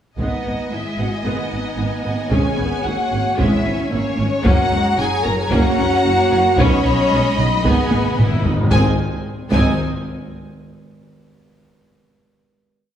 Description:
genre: cinematic, epic orchestral film score.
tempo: 112 BPM.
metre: 4/4.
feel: straight.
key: G# minor.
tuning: A4 = 440 Hz.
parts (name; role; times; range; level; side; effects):
warm symphonic violin section; melody; 0.2-9.8 s; C#5 to A#5; -24 LUFS; left 2 dB; none.
clear symphonic violin section; second line; 0.2-9.8 s; C#5 to B5; -26 LUFS; left 3 dB; none.
warm symphonic viola section; accompaniment; 0.2-9.8 s; G#3 to F#4; -27 LUFS; right 1 dB; none.
mellow trombone section; sustained chords; 0.2-8.9 s; C#3 to C#4; -28 LUFS; right 2 dB; none.
warm French horn section; sustained chords; 0.2-8.9 s; C#4 to A#4; -22 LUFS; left 1 dB; none.
dark tuba; bass; 0.2-9.7 s; F#1 to B1; -26 LUFS; right 2 dB; none.
rich symphonic cello section; bass; 0.2-9.8 s; G#2 to C#4; -25 LUFS; right 1 dB; none.
rich symphonic double bass section; bass; 0.2-9.8 s; F#1 to B1; -24 LUFS; right 2 dB; none.
taiko ensemble; drums; 0.2-10.5 s; none; -21 LUFS; equal; none.
timpani; percussion; 2.3-3.1, 7.7-9.8 s; G#2; -23 LUFS; left 1 dB; none.
room: wet scoring stage reverb, RT60 1.8 s.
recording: studio reverb.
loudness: -15 LUFS.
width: side -10 dB against mid.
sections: 0.2-8.7 theme; 8.7-10.8 final chord.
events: timpani fill 7.7-8.7; drum fill 7.9-8.7.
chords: 0.2 G#m; 2.3 C#m/G#; 4.5 F#; 6.6 Badd9; 7.7 G#m; 8.7 G#.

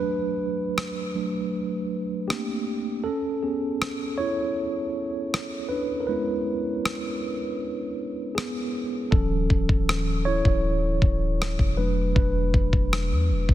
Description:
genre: contemporary R&B.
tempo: 79 BPM.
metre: 4/4.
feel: straight.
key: A major.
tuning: A4 = 440 Hz.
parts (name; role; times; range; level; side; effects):
mellow tine electric piano; accompaniment; 0.0-13.5 s; E3 to C#5; -26 LUFS; right 2 dB; medium stereo tremolo.
dusty soul sampler-style drum kit; drums; 0.8-13.5 s; kick drum, rim click; -26 LUFS; left 1 dB; soft clipping on snare.
clean 808-style bass; bass; 9.1-13.5 s; D1 to E2; -25 LUFS; left 1 dB; none.
room: light reverb.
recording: dense, heavily limited modern master.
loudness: -23 LUFS.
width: side -13 dB against mid.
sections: 0.0-13.5 A section.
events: break 0.0-9.1; tine electric piano solo 0.0-13.5.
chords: 0.0 Bm7/F#; 2.3 Bbmaj9; 3.0 Amaj9; 9.1 Dmaj9; 11.8 E9sus4.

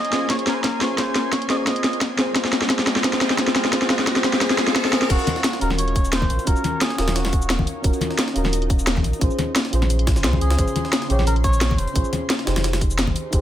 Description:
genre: liquid drum and bass.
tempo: 175 BPM.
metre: 4/4.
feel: straight.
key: Eb dorian.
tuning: A4 = 436 Hz.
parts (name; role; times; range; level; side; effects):
trumpet with cup mute; melody; 0.0-2.0, 4.9-7.7, 10.4-12.1 s; Gb4 to Eb5; -28 LUFS; equal; ping-pong delay.
mellow FM electric piano; accompaniment; 0.0-13.4 s; C4 to F5; -26 LUFS; equal; chorus, digital delay.
shimmering ambient pad; sustained chords; 0.0-13.4 s; Db3 to C6; -31 LUFS; equal; chorus, built-in reverb, sidechain pumping.
drum and bass drum kit; drums; 0.0-13.4 s; cabasa, crash cymbal, hi-hat, snare drum; -22 LUFS; equal; small room ambience.
riser; sound effects; 1.5-5.1 s; none; -30 LUFS; left 2 dB; none.
electronic kick drum; drums; 0.3-13.4 s; none; -22 LUFS; equal; high-pass filter on kick, small room ambience.
warm sub bass; bass; 5.1-13.4 s; Eb1 to Db2; -22 LUFS; equal; none.
jungle sampler-style drum kit; drums; 5.1-13.4 s; hi-hat, snare drum; -30 LUFS; equal; high-pass filter on hats, small room ambience, high-pass filter on snare.
congas; percussion; 5.3-13.1 s; none; -28 LUFS; left 4 dB; none.
room: light reverb.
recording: none.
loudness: -18 LUFS.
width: side -11 dB against mid.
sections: 0.0-5.1 A section; 5.1-13.4 B section.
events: build-up 0.0-5.1; drum fill 0.0-5.1; riser 1.5-5.1; drop 5.1-13.4.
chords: 0.0 Bbm9; 1.7 Fm9; 5.1 Ebm9; 9.2 Bbm9; 12.6 Fm9.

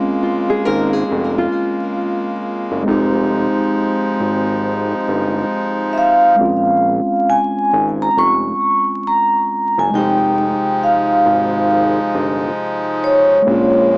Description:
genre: lo-fi hip hop.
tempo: 68 BPM.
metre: 4/4.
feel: swing 64% on 16ths.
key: Bb minor.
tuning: A4 = 439 Hz.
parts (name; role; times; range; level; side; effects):
mellow tine electric piano; accompaniment; 0.0-14.0 s; C3 to G4; -20 LUFS; equal; medium stereo tremolo, cassette tape.
accordion; sustained chords; 0.0-14.0 s; Db3 to Eb4; -21 LUFS; equal; none.
nylon-string guitar; second line; 0.2-2.7 s; F4 to Bb4; -20 LUFS; left 1 dB; tape echo.
fat analog bass; bass; 0.7-14.0 s; F1 to Bb1; -20 LUFS; equal; none.
vibraphone with soft mallets; melody; 5.9-14.0 s; Db5 to Db6; -14 LUFS; equal; none.
room: moderate spring reverb, RT60 1.5 s, small room ambience.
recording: vinyl crackle, small speaker sound.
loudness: -13 LUFS.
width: side -26 dB against mid.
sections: 0.0-14.0 A section.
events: none.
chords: 0.0 Bbm7; 2.9 Fm7; 6.4 Bbm7; 9.9 Fm7; 13.5 Bbm7.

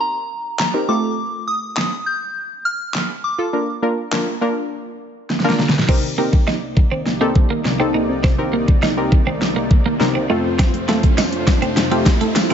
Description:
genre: dance-pop.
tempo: 102 BPM.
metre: 4/4.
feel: straight.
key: C dorian.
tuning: A4 = 440 Hz.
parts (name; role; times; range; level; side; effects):
soft synth bell; melody; 0.0-3.8 s; Bb5 to G6; -22 LUFS; left 1 dB; chorus, tape echo.
glassy wavetable pluck; accompaniment; 0.0-12.5 s; A3 to Bb4; -22 LUFS; left 1 dB; chorus, sidechain pumping.
pop drum kit; drums; 0.6-12.5 s; crash cymbal, handclaps, hi-hat, kick drum, snare drum; -16 LUFS; equal; overdrive.
soft supersaw; sustained chords; 5.9-12.5 s; C2 to D5; -25 LUFS; equal; sidechain pumping.
thumb-piano-like synth pluck; arpeggios; 5.9-12.5 s; C3 to F4; -27 LUFS; left 3 dB; chorus, sidechain pumping, tape echo.
twelve-string electric guitar; riff; 5.9-12.5 s; A3 to Eb4; -24 LUFS; right 6 dB; lush chorus.
riser; sound effects; 7.9-12.5 s; none; -28 LUFS; equal; none.
tambourine; percussion; 10.9-12.5 s; none; -33 LUFS; left 7 dB; none.
room: light reverb.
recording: nothing above 7.8 kHz.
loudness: -16 LUFS.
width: side -8 dB against mid.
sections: 0.0-5.9 A section; 5.9-12.5 B section.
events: drum fill 5.3-5.9, 5.9-12.5; build-up 5.9-12.5; riser 7.9-12.5.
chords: 0.0 Cm7; 0.9 F; 3.5 Bb; 5.9 Cm7; 10.3 F.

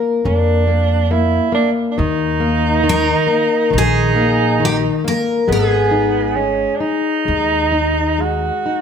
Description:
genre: fado-style ballad.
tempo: 68 BPM.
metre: 4/4.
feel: rubato.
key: G# minor.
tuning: A4 = 440 Hz.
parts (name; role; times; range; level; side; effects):
picked twelve-string acoustic guitar; melody; 0.0-8.2 s; G4 to A#4; -19 LUFS; left 1 dB; none.
nylon-string guitar; accompaniment; 0.0-8.8 s; D#3 to D#4; -19 LUFS; left 5 dB; none.
mellow soprano saxophone; second line; 0.3-8.8 s; B3 to F#4; -18 LUFS; right 4 dB; none.
upright bass; bass; 0.3-8.5 s; G#1 to E#2; -19 LUFS; equal; none.
room: moderate recital hall reverb, RT60 1.4 s.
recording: none.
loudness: -14 LUFS.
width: side -7 dB against mid.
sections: 0.0-8.8 A section.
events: none.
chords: 0.0 A#; 2.0 D#5; 5.5 G#m.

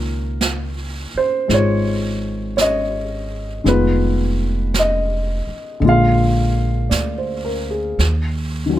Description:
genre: jazz ballad.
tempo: 55 BPM.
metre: 4/4.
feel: swing 67% on 8ths.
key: Db major.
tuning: A4 = 440 Hz.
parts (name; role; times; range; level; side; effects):
dark baby grand piano; accompaniment; 0.0-8.8 s; D3 to F5; -19 LUFS; left 1 dB; none.
upright bass; bass; 0.0-8.8 s; F1 to Eb2; -20 LUFS; right 1 dB; none.
jazz brush drum kit; drums; 0.4-8.8 s; brushed snare drum, hi-hat, snare drum; -26 LUFS; right 4 dB; none.
room: little or no reverb.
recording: close, detailed microphones.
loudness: -16 LUFS.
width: side -13 dB against mid.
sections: 0.0-8.8 A section.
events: none.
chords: 0.0 Db69; 3.7 Fm7b5; 5.8 Bb7; 8.0 Ebm.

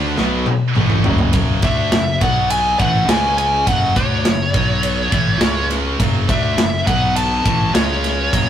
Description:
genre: heavy metal.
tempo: 103 BPM.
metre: 4/4.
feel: straight.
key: F# minor.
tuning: A4 = 440 Hz.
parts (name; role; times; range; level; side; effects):
biting overdriven guitar; riff; 0.0-1.3 s; F#2 to D4; -24 LUFS; equal; none.
heavy high-gain guitar; riff; 0.0-8.5 s; F#2 to D4; -24 LUFS; right 8 dB; distortion.
high-gain distorted guitar; riff; 0.0-8.5 s; F#2 to D4; -24 LUFS; left 7 dB; distortion.
fuzz fingered electric bass; bass; 0.0-8.5 s; F#1 to D2; -22 LUFS; equal; overdrive.
tight metal drum kit; drums; 0.2-8.5 s; kick drum, ride cymbal, snare drum, toms; -18 LUFS; equal; none.
high-gain lead guitar; melody; 1.6-8.5 s; C#5 to A5; -19 LUFS; equal; distortion.
room: light reverb.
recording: rough rehearsal-room recording, warm saturation.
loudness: -14 LUFS.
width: side -10 dB against mid.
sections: 0.0-1.3 A section; 1.3-8.5 B section.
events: drum fill 0.2-1.3.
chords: 0.2 F#m; 2.2 B5; 2.8 F#m; 3.1 C#5; 3.7 F#m; 4.5 B5; 5.1 A; 5.4 C#5; 6.0 F#m; 6.9 B5; 7.5 A5; 7.7 C#5.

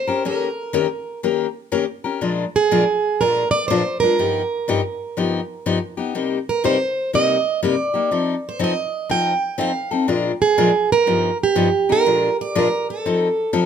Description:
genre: jazz.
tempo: 122 BPM.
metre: 4/4.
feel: swing 66% on 8ths.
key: Bb mixolydian.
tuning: A4 = 443 Hz.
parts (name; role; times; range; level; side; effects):
picked plugged-in steel-string acoustic guitar; melody; 0.0-13.5 s; G4 to G5; -19 LUFS; right 4 dB; none.
picked steel-string acoustic guitar; accompaniment; 0.1-13.6 s; G2 to Bb4; -20 LUFS; left 5 dB; none.
room: light reverb.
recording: none.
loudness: -17 LUFS.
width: side -8 dB against mid.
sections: 0.0-13.7 A section.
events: none.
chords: 0.0 Eb7; 2.2 Bb7; 4.2 G7alt; 6.1 Cm7; 8.1 F7; 10.1 Bb7; 11.1 Gaug7; 12.1 Bb7; 13.0 F7.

